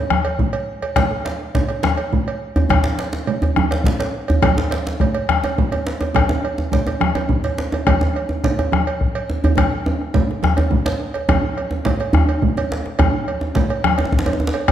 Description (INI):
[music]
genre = west african traditional, West African drum ensemble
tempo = 140 BPM (dotted quarters)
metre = 12/8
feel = straight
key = none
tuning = none
[part]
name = bombo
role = percussion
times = 0.1-14.7 s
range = none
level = -21 LUFS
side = left 3 dB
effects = none
[part]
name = congas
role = percussion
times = 0.1-14.7 s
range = none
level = -24 LUFS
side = right 6 dB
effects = none
[part]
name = djembe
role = percussion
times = 0.1-14.7 s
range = none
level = -26 LUFS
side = left 4 dB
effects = none
[part]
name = cowbell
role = percussion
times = 0.2-14.7 s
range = none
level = -25 LUFS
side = right 5 dB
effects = none
[part]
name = djembe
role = percussion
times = 1.0-14.6 s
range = none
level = -21 LUFS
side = right 1 dB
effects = none
[sound]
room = moderate recital hall reverb, RT60 1.6 s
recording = none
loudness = -16 LUFS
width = side -10 dB against mid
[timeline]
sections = 0.0-11.3 A section; 11.3-14.7 B section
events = drum fill 9.6-11.3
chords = none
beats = 0.10 0.54 | 0.97 1.40 1.83 2.27 | 2.70 3.13 3.56 4.00 | 4.43 4.86 5.29 5.72 | 6.15 6.58 7.01 7.44 | 7.87 8.30 8.72 9.15 | 9.58 10.01 10.44 10.86 | 11.29 11.72 12.14 12.57 | 13.00 13.42 13.85 14.27 | 14.70